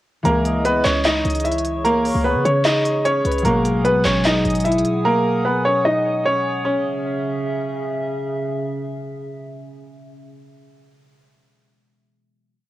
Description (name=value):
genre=hip hop, trap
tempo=150 BPM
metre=4/4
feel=half-time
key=C# dorian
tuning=A4 = 440 Hz
part: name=clear concert grand piano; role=melody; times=0.2-7.8 s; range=A#3 to E5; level=-18 LUFS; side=equal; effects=cassette tape, analog delay
part: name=concert harp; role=accompaniment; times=0.2-6.7 s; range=B2 to G#4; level=-24 LUFS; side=left 1 dB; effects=cassette tape
part: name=short 808-style bass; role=bass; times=0.2-4.8 s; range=G#1 to C#3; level=-25 LUFS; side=equal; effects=none
part: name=trap drum kit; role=drums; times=0.2-4.9 s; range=handclaps, hi-hat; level=-25 LUFS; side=equal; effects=cassette tape
part: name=warbly tape-like pad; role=sustained chords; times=0.3-10.3 s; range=C#3 to D#6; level=-27 LUFS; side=right 1 dB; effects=chorus, built-in reverb, cassette tape
part: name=gliding portamento lead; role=second line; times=0.5-3.4 s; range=B4 to D#5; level=-29 LUFS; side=left 2 dB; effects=chorus, cassette tape, analog delay
room=light reverb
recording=home recording on cassette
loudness=-17 LUFS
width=side -15 dB against mid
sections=0.2-6.7 hook; 6.7-9.8 final chord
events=none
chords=0.2 C#m; 3.5 G#m7; 6.7 C#m